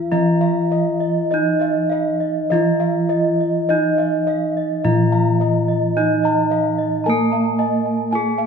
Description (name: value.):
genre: Javanese gamelan.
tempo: 50-57 BPM.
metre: 4/4.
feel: straight.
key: unclear.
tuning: A4 = 440 Hz.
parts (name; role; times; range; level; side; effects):
gamelan-type bronze metallophone; melody; 0.0-8.5 s; Eb4 to Bb4-40c; -21 LUFS; right 1 dB; none.
gamelan-type bronze metallophone; accompaniment; 0.0-8.5 s; Fb3+50c to Bb3-40c; -23 LUFS; right 3 dB; none.
gamelan-type bronze metallophone; arpeggios; 0.0-8.5 s; Eb5 to Bb5-40c; -24 LUFS; right 3 dB; none.
gamelan-type bossed gongs; bass; 0.0-8.5 s; Bb2-40c to Bb4-40c; -24 LUFS; left 1 dB; none.
gamelan-type bossed gongs; arpeggios; 0.1-8.5 s; Eb5 to Bb5-40c; -23 LUFS; left 5 dB; none.
room: moderate concert hall reverb, RT60 1.8 s.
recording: minimal, uncompressed stereo recording.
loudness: -16 LUFS.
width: side -6 dB against mid.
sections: 0.0-8.5 A section.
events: none.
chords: none.